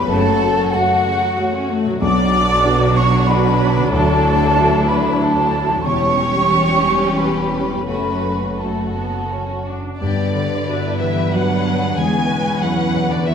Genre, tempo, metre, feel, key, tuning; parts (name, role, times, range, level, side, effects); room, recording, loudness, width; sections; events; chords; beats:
cinematic, emotional film score for orchestra; 93 BPM; 3/4; rubato; A4 = 440 Hz
warm studio violin section; melody; 0.0-13.3 s; E4 to G#5; -26 LUFS; left 3 dB
clear studio violin section; second line; 0.0-13.3 s; B3 to D5; -26 LUFS; left 2 dB
flute section; second line; 0.0-9.7 s; F#5 to D6; -19 LUFS; right 1 dB
dark baby grand piano; accompaniment; 0.0-13.3 s; B1 to E5; -22 LUFS; equal
warm studio viola section; accompaniment; 0.0-13.3 s; C#3 to C#5; -23 LUFS; equal
concert harp; arpeggios; 0.0-13.3 s; E2 to D5; -26 LUFS; left 7 dB
rich studio double bass section; bass; 0.1-13.3 s; E1 to G2; -24 LUFS; right 3 dB
warm studio cello section; bass; 0.1-13.3 s; D2 to G#3; -24 LUFS; right 3 dB
warm French horn section; sustained chords; 10.0-13.3 s; D3 to B3; -26 LUFS; left 4 dB
wet scoring stage reverb, RT60 1.8 s; minimal, uncompressed stereo recording; -15 LUFS; side -7 dB against mid
0.0-10.0 A section; 10.0-13.3 B section
0.1 F#m; 2.0 Bm; 3.9 Dadd9; 5.9 C#dim/E; 7.9 F#m; 10.0 Gmaj7; 12.0 E
| 0.10 0.74 1.39 | 2.02 2.66 3.29 | 3.93 4.56 5.21 | 5.86 6.52 7.18 | 7.88 8.60 9.31 | 10.01 10.67 11.33 | 11.99 12.63 13.28